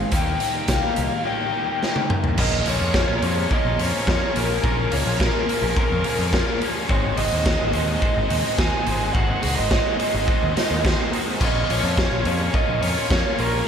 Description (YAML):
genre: indie rock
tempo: 106 BPM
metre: 4/4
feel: straight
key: unclear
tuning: A4 = 440 Hz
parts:
  - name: lead guitar through a small cranked amp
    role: melody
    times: 0.0-13.7 s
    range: Bb4 to Ab5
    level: -25 LUFS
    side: equal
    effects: overdrive, slapback echo
  - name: crunchy overdriven guitar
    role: riff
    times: 0.0-13.7 s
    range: Eb3 to Ab4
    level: -28 LUFS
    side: left 9 dB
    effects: slapback echo
  - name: overdriven electric guitar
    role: riff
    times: 0.0-13.7 s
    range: Ab2 to Db5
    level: -29 LUFS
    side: right 7 dB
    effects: ensemble chorus, slapback echo
  - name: growling picked electric bass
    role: bass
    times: 0.0-13.6 s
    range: Ab1 to F2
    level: -25 LUFS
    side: equal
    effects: overdrive
  - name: raw garage drum kit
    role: drums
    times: 0.1-13.5 s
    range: crash cymbal, hi-hat, kick drum, snare drum, toms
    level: -23 LUFS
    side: equal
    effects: none
  - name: bright tonewheel organ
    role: sustained chords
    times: 2.4-13.7 s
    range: Ab4 to Db6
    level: -36 LUFS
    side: equal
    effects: none
room: moderate lush hall reverb, RT60 1.8 s, small room ambience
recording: big arena sound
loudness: -19 LUFS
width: side -7 dB against mid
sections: 0.0-2.4 A section; 2.4-13.7 B section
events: drum fill 1.8-2.4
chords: 0.1 Eb; 2.4 Bbm7; 6.9 Ab7(no3); 11.4 Bbm7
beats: | 0.13 0.69 1.26 1.82 | 2.39 2.95 3.51 4.08 | 4.64 5.21 5.77 6.33 | 6.90 7.46 8.03 8.59 | 9.15 9.72 10.28 10.85 | 11.41 11.98 12.54 13.11 | 13.67